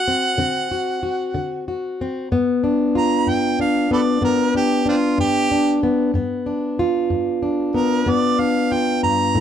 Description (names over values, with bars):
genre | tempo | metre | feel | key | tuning
acoustic country blues, solo or duo | 62 BPM (dotted quarters) | 12/8 | straight | G mixolydian | A4 = 440 Hz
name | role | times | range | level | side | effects
clear harmonica | melody | 0.0-9.4 s | C4 to Bb5 | -21 LUFS | right 4 dB | none
fingerpicked plugged-in steel-string acoustic guitar | accompaniment | 0.0-9.4 s | G2 to F#4 | -18 LUFS | left 2 dB | none
room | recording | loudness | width
moderate studio ambience, RT60 0.5 s | dark, warm production | -17 LUFS | side -9 dB against mid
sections
0.0-2.3 A section; 2.3-9.4 B section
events
harmonica solo 2.3-9.4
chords
0.0 D7; 2.3 G7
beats
0.38 1.34 | 2.30 3.26 4.22 5.18 | 6.14 7.10 8.06 9.03